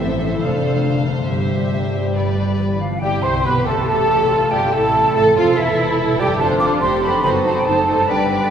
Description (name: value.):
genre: classical, dramatic, fast romantic movement for symphony orchestra.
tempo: 141 BPM.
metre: 4/4.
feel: rubato.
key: C major.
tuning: A4 = 440 Hz.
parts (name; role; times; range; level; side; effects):
warm studio violin section; melody; 0.0-8.5 s; E4 to F5; -27 LUFS; left 2 dB; none.
warm symphonic violin section; second line; 0.0-8.5 s; E4 to C5; -25 LUFS; left 2 dB; none.
warm symphonic viola section; accompaniment; 0.0-8.5 s; D4 to C5; -25 LUFS; right 4 dB; none.
dark French horn section; sustained chords; 0.0-8.5 s; E3 to E4; -25 LUFS; left 2 dB; none.
concert harp; arpeggios; 0.0-8.5 s; F2 to B4; -26 LUFS; left 5 dB; none.
clear symphonic double bass section; bass; 0.0-8.5 s; E1 to C2; -24 LUFS; right 2 dB; none.
dark symphonic cello section; bass; 0.0-8.5 s; F2 to B4; -26 LUFS; right 3 dB; none.
hollow small flute group; second line; 2.8-8.5 s; E5 to D6; -19 LUFS; equal; none.
warm clarinet; second line; 3.0-8.5 s; D4 to C5; -26 LUFS; equal; none.
warm bassoon; accompaniment; 3.0-8.5 s; E3 to C4; -25 LUFS; right 4 dB; none.
room: wet church reverb, RT60 3.5 s.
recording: recorded in a church or concert hall.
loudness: -15 LUFS.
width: side -8 dB against mid.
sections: 0.0-3.0 A section; 3.0-8.5 B section.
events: none.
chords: 0.4 Dm7/F; 1.3 C/G; 2.2 G; 3.0 C/G; 4.7 Am; 6.4 Dm7/F; 7.2 F#dim7.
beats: 0.03 0.44 0.85 | 1.29 1.73 2.16 2.59 | 3.02 3.46 3.88 4.31 | 4.74 5.16 5.58 6.00 | 6.41 6.83 7.24 7.67 | 8.10.